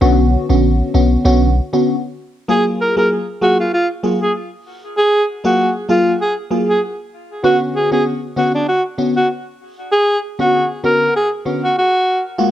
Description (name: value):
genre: afrobeats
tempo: 97 BPM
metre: 4/4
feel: swing 55% on 16ths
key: unclear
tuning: A4 = 440 Hz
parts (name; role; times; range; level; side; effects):
- FM electric piano with soft pad layer; accompaniment; 0.0-12.5 s; D3 to G#4; -16 LUFS; left 1 dB; chorus, phaser, cassette tape
- punchy sub bass; bass; 0.0-1.6 s; A#1 to B1; -14 LUFS; equal; none
- breathy alto saxophone; melody; 2.5-12.2 s; D4 to A#4; -15 LUFS; equal; cassette tape, analog delay
room: light reverb, small room reverb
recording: home recording on cassette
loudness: -13 LUFS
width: side -12 dB against mid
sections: 0.0-2.5 A section; 2.5-12.5 B section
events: none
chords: 0.0 Bmadd9; 2.5 F#maj9; 7.4 Bmadd9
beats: | 0.01 0.63 1.25 1.87 | 2.49 3.11 3.73 4.34 | 4.96 5.58 6.20 6.82 | 7.44 8.06 8.68 9.29 | 9.91 10.53 11.15 11.77 | 12.39